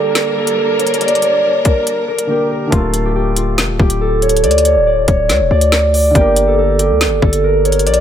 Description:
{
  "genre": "hip hop, drill",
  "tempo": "140 BPM",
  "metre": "4/4",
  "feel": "half-time",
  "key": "D harmonic minor",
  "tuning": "A4 = 441 Hz",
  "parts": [
    { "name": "concert harp", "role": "melody", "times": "0.0-8.0 s", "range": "F4 to D5", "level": "-13 LUFS", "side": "equal", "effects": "low-pass filter" },
    { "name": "dark concert grand piano", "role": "accompaniment", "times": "0.0-8.0 s", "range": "D3 to Bb4", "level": "-24 LUFS", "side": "right 2 dB", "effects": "low-pass filter" },
    { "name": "rich studio string section", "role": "sustained chords", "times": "0.0-2.7 s", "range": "G3 to Bb4", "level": "-22 LUFS", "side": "left 1 dB", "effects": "low-pass filter" },
    { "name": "drill drum kit", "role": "drums", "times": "0.2-8.0 s", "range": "hi-hat, kick drum, snare drum", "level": "-16 LUFS", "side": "equal", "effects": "none" },
    { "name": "distorted 808-style bass", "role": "bass", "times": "2.7-8.0 s", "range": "D1 to D2", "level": "-16 LUFS", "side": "equal", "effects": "distortion" }
  ],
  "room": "small room ambience",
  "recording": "none",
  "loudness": "-11 LUFS",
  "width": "side -9 dB against mid",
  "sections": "0.0-2.7 A section; 2.7-8.0 B section",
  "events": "filter sweep 0.0-2.7",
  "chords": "0.0 Gm; 2.7 Dm; 6.2 Gm"
}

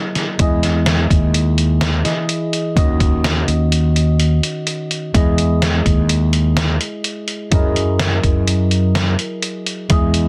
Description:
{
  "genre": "progressive instrumental, band music in an uneven meter",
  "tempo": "126 BPM",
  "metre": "5/4",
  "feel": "straight",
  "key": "E lydian",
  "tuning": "A4 = 441 Hz",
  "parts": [
    { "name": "tine electric piano", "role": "accompaniment", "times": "0.0-10.3 s", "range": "D#3 to D#5", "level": "-24 LUFS", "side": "equal", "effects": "lush chorus" },
    { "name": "trip hop sampler-style drum kit", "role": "drums", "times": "0.2-10.2 s", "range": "hi-hat, kick drum, snare drum", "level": "-20 LUFS", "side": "equal", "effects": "none" },
    { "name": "fretless electric bass", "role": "bass", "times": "0.4-10.3 s", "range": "D#2 to F#2", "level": "-18 LUFS", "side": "equal", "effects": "none" }
  ],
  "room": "little or no reverb",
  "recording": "dense, heavily limited modern master",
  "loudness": "-17 LUFS",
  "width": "mono",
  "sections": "0.0-10.3 A section",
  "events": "break 4.2-5.1",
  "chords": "0.4 Emaj7; 2.8 D#m7; 5.1 Emaj7; 7.5 F#13"
}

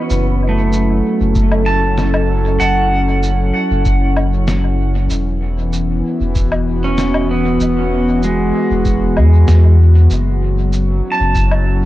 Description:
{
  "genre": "ambient dub",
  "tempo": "96 BPM",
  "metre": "4/4",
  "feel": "straight",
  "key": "F# minor",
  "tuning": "A4 = 441 Hz",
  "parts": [
    { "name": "airy breathy pad", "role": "sustained chords", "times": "0.0-11.9 s", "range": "E3 to A4", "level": "-19 LUFS", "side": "left 1 dB", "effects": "chorus, cassette tape" },
    { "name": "pedal steel guitar", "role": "arpeggios", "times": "0.0-11.9 s", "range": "G#3 to A5", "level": "-19 LUFS", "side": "right 2 dB", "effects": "vintage 12-bit sampler grit, cassette tape, analog delay" },
    { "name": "soft dub sub bass", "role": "bass", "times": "0.1-11.9 s", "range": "E1 to E2", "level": "-14 LUFS", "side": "equal", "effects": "none" },
    { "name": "electronic cabasa, woodblock and snare drum", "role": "drums", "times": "0.1-11.6 s", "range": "none", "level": "-24 LUFS", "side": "left 1 dB", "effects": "low-pass filter on perc, cassette tape, low-pass filter on snare, low-pass filter on room, dub echo" },
    { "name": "electronic kick drum", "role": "drums", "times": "1.4-11.5 s", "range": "none", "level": "-19 LUFS", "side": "equal", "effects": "cassette tape" }
  ],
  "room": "digital ambience",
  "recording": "home recording on cassette",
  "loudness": "-12 LUFS",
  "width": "side -15 dB against mid",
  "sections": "0.1-11.9 A section",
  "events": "none",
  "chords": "0.1 F#m7; 5.1 E69; 10.1 F#m7"
}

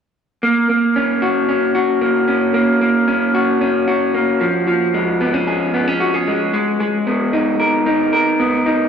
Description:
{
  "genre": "indie pop",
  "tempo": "113 BPM",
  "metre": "4/4",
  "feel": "straight",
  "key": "F# major",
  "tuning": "A4 = 442 Hz",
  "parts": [
    { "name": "electric guitar through a small old amp", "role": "solo", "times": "0.4-8.9 s", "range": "E#3 to A#4", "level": "-14 LUFS", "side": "equal", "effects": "none" }
  ],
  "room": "wet cathedral reverb, RT60 5.0 s",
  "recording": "dreamy mix soaked in reverb",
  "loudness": "-14 LUFS",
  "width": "side -7 dB against mid",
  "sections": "0.4-8.9 A section",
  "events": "none",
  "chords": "0.4 F#; 4.4 C#; 6.5 G#madd9"
}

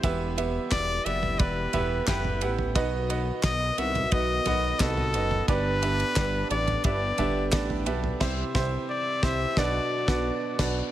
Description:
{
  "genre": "piano-driven pop",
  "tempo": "88 BPM",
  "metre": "4/4",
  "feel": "straight",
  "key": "unclear",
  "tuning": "A4 = 439 Hz",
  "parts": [
    { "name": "clear baby grand piano", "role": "accompaniment", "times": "0.0-10.9 s", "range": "G2 to G5", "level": "-30 LUFS", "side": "right 4 dB", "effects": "none" },
    { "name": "mellow French horn section", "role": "sustained chords", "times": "0.0-10.9 s", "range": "D3 to G4", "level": "-40 LUFS", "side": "left 4 dB", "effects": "none" },
    { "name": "fat analog bass", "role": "bass", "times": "0.0-10.8 s", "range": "E1 to C2", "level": "-30 LUFS", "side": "equal", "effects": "none" },
    { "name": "damped 70s drum kit", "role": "drums", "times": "0.0-10.8 s", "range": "crash cymbal, handclaps, kick drum, ride cymbal, snare drum, toms", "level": "-29 LUFS", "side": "equal", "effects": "none" },
    { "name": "clear trumpet", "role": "melody", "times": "0.7-10.6 s", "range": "A4 to E5", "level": "-29 LUFS", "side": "left 3 dB", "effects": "none" }
  ],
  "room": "light reverb, studio ambience",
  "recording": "none",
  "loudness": "-24 LUFS",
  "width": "side -12 dB against mid",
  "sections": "0.0-10.9 A section",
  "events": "band accent 8.2-10.9",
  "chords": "0.0 Em; 2.8 B; 5.5 G; 8.2 C; 9.6 Bm"
}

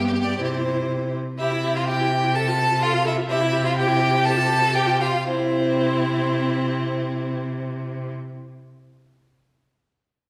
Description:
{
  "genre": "quick classical-period movement for string quartet",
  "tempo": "113-128 BPM",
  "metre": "2/4",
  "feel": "rubato",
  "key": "C major",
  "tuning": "A4 = 440 Hz",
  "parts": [
    { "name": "clear violin", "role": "second line", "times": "0.0-8.1 s", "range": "C4 to A4", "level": "-29 LUFS", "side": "equal", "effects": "none" },
    { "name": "rich viola", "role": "accompaniment", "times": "0.0-8.1 s", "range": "B3 to A4", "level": "-29 LUFS", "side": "equal", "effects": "none" },
    { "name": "rich cello", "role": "bass", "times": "0.0-8.1 s", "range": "G2 to C3", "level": "-28 LUFS", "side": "equal", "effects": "none" },
    { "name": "warm violin", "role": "melody", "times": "0.2-8.1 s", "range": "C5 to A5", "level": "-27 LUFS", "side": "equal", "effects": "none" }
  ],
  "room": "wet scoring stage reverb, RT60 1.6 s",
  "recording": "recorded in a church or concert hall",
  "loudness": "-22 LUFS",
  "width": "mono",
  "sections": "0.0-1.4 A section; 1.4-5.3 B section; 5.3-7.4 C section",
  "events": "slowing down 2.8-5.3",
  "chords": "0.4 C; 2.3 F/C; 3.3 C; 4.2 Fadd9/C; 5.3 C"
}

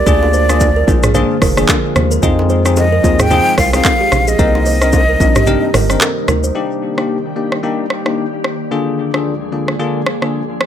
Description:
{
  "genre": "afrobeats",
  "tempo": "111 BPM",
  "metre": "4/4",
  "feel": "swing 58% on 16ths",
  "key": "Eb major",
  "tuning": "A4 = 440 Hz",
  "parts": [
    { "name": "breathy jazz flute", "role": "melody", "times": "0.0-6.3 s", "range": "D5 to G5", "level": "-16 LUFS", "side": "equal", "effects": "dub echo" },
    { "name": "glassy FM pad", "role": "sustained chords", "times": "0.0-10.7 s", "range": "D2 to D5", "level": "-22 LUFS", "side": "left 1 dB", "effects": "ensemble chorus, built-in reverb" },
    { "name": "round analog bass", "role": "bass", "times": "0.0-6.5 s", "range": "F1 to F2", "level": "-16 LUFS", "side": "equal", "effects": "none" },
    { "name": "bell-like tine electric piano", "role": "accompaniment", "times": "0.1-10.4 s", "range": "D3 to Bb4", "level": "-18 LUFS", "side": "left 5 dB", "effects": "lush chorus, dub echo" },
    { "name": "kalimba", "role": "riff", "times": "0.1-6.5 s", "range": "G4 to Eb5", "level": "-20 LUFS", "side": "right 5 dB", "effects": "dub echo" },
    { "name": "afro-pop drum kit", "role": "drums", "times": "0.1-10.7 s", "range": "handclaps, hi-hat, kick drum, rim click, shaker, toms", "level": "-16 LUFS", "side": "equal", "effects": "none" },
    { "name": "congas and bongos", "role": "percussion", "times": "0.1-6.4 s", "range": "none", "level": "-23 LUFS", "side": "right 3 dB", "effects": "none" }
  ],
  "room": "light reverb",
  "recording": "echo-heavy mix",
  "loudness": "-11 LUFS",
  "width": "side -9 dB against mid",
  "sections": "0.0-6.6 A section; 6.6-10.7 B section",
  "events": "break 5.5-6.6",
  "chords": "0.1 Bb7; 2.2 Fm7; 4.4 Cm9; 6.6 Ebmaj7; 8.7 Bb7/D"
}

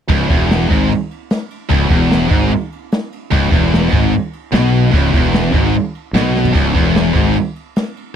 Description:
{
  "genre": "heavy metal",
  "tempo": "149 BPM",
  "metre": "4/4",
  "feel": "straight",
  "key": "C# minor",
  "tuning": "A4 = 440 Hz",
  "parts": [
    { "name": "heavy high-gain guitar", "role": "riff", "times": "0.1-7.3 s", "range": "C#2 to B2", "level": "-18 LUFS", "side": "right 14 dB", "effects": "distortion" },
    { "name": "scooped high-gain guitar", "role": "riff", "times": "0.1-7.3 s", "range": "C#2 to B2", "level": "-16 LUFS", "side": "left 9 dB", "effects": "distortion" },
    { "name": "fuzz fingered electric bass", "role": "bass", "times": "0.1-7.3 s", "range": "C#1 to B1", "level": "-18 LUFS", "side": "equal", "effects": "overdrive" },
    { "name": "jazz brush drum kit", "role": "drums", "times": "0.1-8.1 s", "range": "crash cymbal, kick drum, ride cymbal, snare drum, toms", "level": "-17 LUFS", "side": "equal", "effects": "none" }
  ],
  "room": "little or no reverb",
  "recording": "dry, close 1970s-style studio recording",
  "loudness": "-12 LUFS",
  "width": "side -8 dB against mid",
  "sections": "0.1-8.2 A section",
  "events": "drum fill 6.3",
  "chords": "0.1 C#m"
}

